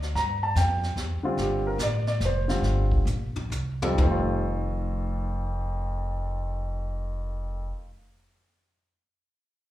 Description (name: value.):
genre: jazz piano trio.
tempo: 125-147 BPM.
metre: 3/4.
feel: swing 67% on 8ths.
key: F mixolydian.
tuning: A4 = 444 Hz.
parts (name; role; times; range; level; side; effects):
warm concert grand piano; melody; 0.0-7.9 s; F2 to Bb5; -29 LUFS; equal; slapback echo.
upright bass; bass; 0.0-7.7 s; F1 to G2; -28 LUFS; equal; none.
jazz brush drum kit; drums; 0.0-4.5 s; brushed snare drum, hi-hat, kick drum, snare drum, toms; -30 LUFS; equal; none.
room: light reverb.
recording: live gig heard through the venue's PA, club reverb.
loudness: -25 LUFS.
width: side -14 dB against mid.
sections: 0.0-1.4 A section; 1.4-4.0 B section; 4.0-6.9 C section.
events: slowing down 1.4-4.0; drum fill 3.1-4.0.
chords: 0.1 Fsus2; 1.0 C; 1.4 Gsus2; 2.2 Csus4; 2.6 Gm7; 3.5 Csus4; 4.0 F7.